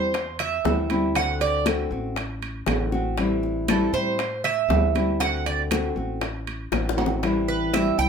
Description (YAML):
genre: latin, Cuban son and guajira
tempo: 119 BPM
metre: 4/4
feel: straight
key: unclear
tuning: A4 = 440 Hz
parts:
  - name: nylon-string guitar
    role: accompaniment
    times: 0.0-8.1 s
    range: D3 to F#4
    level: -25 LUFS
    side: left 2 dB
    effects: none
  - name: Cuban tres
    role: arpeggios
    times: 0.0-8.1 s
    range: A4 to G5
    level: -24 LUFS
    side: right 6 dB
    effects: none
  - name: upright bass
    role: bass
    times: 0.0-8.1 s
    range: A1 to A2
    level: -29 LUFS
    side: equal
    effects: none
  - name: bongos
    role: percussion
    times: 0.1-8.0 s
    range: none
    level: -31 LUFS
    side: left 6 dB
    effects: none
  - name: timbales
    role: percussion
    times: 0.1-8.0 s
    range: none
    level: -31 LUFS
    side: right 6 dB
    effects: none
  - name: congas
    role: percussion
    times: 0.2-8.1 s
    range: none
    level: -32 LUFS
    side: left 2 dB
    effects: none
  - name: claves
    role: percussion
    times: 0.4-8.0 s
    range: none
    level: -36 LUFS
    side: left 8 dB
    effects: none
room: moderate studio ambience, RT60 0.5 s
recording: minimal, uncompressed stereo recording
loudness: -22 LUFS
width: side -6 dB against mid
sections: 0.0-8.1 A section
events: Cuban tres solo 0.0-8.1; drum fill 6.7-7.2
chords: 0.0 Am7 (rootless); 1.2 D7; 3.2 Am7; 5.2 D7; 7.2 Am7